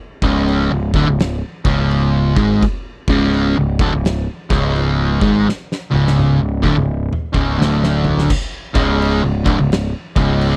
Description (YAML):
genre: stoner and doom metal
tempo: 84 BPM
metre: 4/4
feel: swing 64% on 8ths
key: unclear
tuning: A4 = 440 Hz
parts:
  - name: fuzz guitar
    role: riff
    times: 0.2-10.6 s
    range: C#2 to G#3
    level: -18 LUFS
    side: equal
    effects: distortion
  - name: overdriven picked electric bass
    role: bass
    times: 0.2-10.6 s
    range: C#1 to G#1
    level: -22 LUFS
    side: equal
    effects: none
  - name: oversized low-tuned drum kit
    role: drums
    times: 0.2-10.6 s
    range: crash cymbal, kick drum, snare drum, toms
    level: -23 LUFS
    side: equal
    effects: none
room: little or no reverb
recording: dry, close 1970s-style studio recording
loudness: -16 LUFS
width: mono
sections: 0.0-8.3 A section; 8.3-10.6 B section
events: drum fill 5.5-8.3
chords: 0.0 C#5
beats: 0.49 1.20 1.92 | 2.63 3.34 4.05 4.77 | 5.48 6.19 6.89 7.60 | 8.31 9.01 9.72 10.42